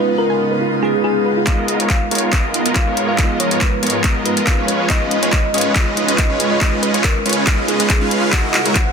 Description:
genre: future bass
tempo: 140 BPM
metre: 4/4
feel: swing 53% on 16ths, half-time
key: G# dorian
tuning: A4 = 439 Hz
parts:
  - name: thumb-piano-like synth pluck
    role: melody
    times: 0.0-8.9 s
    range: G#4 to F#5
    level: -22 LUFS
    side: left 1 dB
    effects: chorus, sidechain pumping, tape echo
  - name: bell-like tine electric piano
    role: accompaniment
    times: 0.0-8.3 s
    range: G#3 to B4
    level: -24 LUFS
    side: right 4 dB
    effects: phaser, sidechain pumping, dub echo
  - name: shimmering ambient pad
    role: sustained chords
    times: 0.0-8.9 s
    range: F#2 to A#4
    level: -25 LUFS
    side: left 1 dB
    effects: chorus, built-in reverb, phaser, sidechain pumping
  - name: soft round pluck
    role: arpeggios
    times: 0.1-1.4, 8.3-8.9 s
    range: E#4 to G#5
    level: -27 LUFS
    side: right 4 dB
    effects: none
  - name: supersaw chords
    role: riff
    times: 1.5-8.8 s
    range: G#3 to E#5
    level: -19 LUFS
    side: right 1 dB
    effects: sidechain pumping, low-pass filter
  - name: electronic kick drum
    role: drums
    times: 1.5-8.8 s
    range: none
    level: -18 LUFS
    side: left 1 dB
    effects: none
  - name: trap drum kit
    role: drums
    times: 1.5-8.8 s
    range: handclaps, hi-hat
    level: -19 LUFS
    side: left 1 dB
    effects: low-pass filter on cymbals, low-pass filter on snare, low-pass filter on hats, low-pass filter on room
  - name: riser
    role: sound effects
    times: 8.6-8.9 s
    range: none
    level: -37 LUFS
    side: equal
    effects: none
room: light reverb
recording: dense, heavily limited modern master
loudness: -14 LUFS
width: side -6 dB against mid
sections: 0.0-1.5 A section; 1.5-8.9 B section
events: build-up 1.5-8.9; drum fill 1.5-8.9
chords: 0.0 C#9; 1.5 G#m69; 4.7 C#9; 8.3 F#13

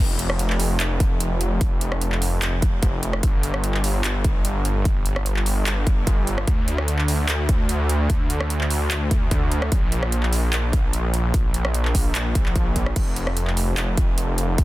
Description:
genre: future bass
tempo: 148 BPM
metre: 4/4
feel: half-time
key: unclear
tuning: A4 = 440 Hz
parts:
  - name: wide detuned saw bass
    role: bass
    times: 0.0-14.6 s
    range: F1 to D2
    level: -22 LUFS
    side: equal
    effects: chorus, sidechain pumping
  - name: big-room dance drum kit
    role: drums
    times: 0.2-14.6 s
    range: crash cymbal, handclaps, hi-hat, rim click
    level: -28 LUFS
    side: right 1 dB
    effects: overdrive
  - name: electronic kick drum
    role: drums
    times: 1.0-14.6 s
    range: none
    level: -20 LUFS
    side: equal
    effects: overdrive
room: little or no reverb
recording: dense, heavily limited modern master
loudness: -19 LUFS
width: side -17 dB against mid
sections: 0.0-14.6 A section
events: drop 0.0-14.6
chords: none

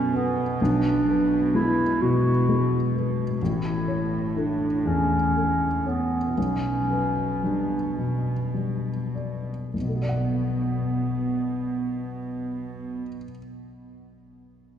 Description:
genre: cinematic, emotional film score for orchestra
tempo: 33-43 BPM (dotted quarters)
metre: 6/8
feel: rubato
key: B minor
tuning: A4 = 441 Hz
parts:
  - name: dark clarinet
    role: second line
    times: 0.0-13.0 s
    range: B3 to F#4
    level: -26 LUFS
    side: equal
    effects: none
  - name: dark baby grand piano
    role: accompaniment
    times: 0.0-14.8 s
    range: A1 to F#5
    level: -26 LUFS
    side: left 2 dB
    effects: none
  - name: warm studio cello section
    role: bass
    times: 0.0-13.0 s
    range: A2 to B2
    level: -30 LUFS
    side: right 4 dB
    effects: none
room: wet cathedral reverb, RT60 4.4 s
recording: recorded in a church or concert hall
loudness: -22 LUFS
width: side -9 dB against mid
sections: 0.0-9.7 A section; 9.7-13.3 B section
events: slowing down 2.0-9.7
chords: 0.0 B5; 0.6 Bm6; 3.4 A; 6.4 G/B; 9.7 Bm7

